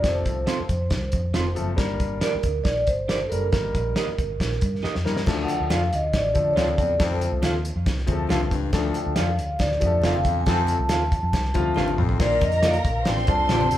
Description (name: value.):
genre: uptempo 1960s-style soul.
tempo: 138 BPM.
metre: 4/4.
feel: straight.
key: unclear.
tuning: A4 = 440 Hz.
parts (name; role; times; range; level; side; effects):
vibraphone with soft mallets; melody; 0.0-13.8 s; A4 to A5; -25 LUFS; right 1 dB; none.
warm concert grand piano; accompaniment; 0.0-13.7 s; F3 to C6; -29 LUFS; left 5 dB; none.
vintage muted picked electric bass; bass; 0.0-13.8 s; F1 to D3; -26 LUFS; equal; none.
cloth-damped thuddy drum kit; drums; 0.0-13.8 s; crash cymbal, hi-hat, kick drum, snare drum, toms; -26 LUFS; equal; none.
electric guitar through a small old amp; stabs; 0.5-13.6 s; Bb3 to F5; -30 LUFS; right 3 dB; analog delay.
growling baritone saxophone; riff; 5.3-13.8 s; D2 to C3; -30 LUFS; left 6 dB; none.
congas; percussion; 5.3-13.7 s; none; -35 LUFS; equal; none.
clear horn section; second line; 10.5-10.6 s; C4 to A4; -33 LUFS; left 1 dB; none.
warm studio violin section; second line; 12.2-13.8 s; Bb4 to C6; -30 LUFS; equal; none.
room: moderate large studio reverb, RT60 0.9 s.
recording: band playing live in one room.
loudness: -20 LUFS.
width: side -12 dB against mid.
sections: 0.0-5.3 A section; 5.3-12.2 B section; 12.2-13.8 C section.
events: drum fill 4.8-5.3, 11.8-12.2; band accent 10.5-12.2; grand piano fill 11.3-12.2.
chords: 0.0 F; 1.8 Gm; 3.5 Eb/G; 5.3 Dm; 7.0 F; 8.7 Dm; 10.5 F; 12.2 Bb; 13.1 Dm7/A.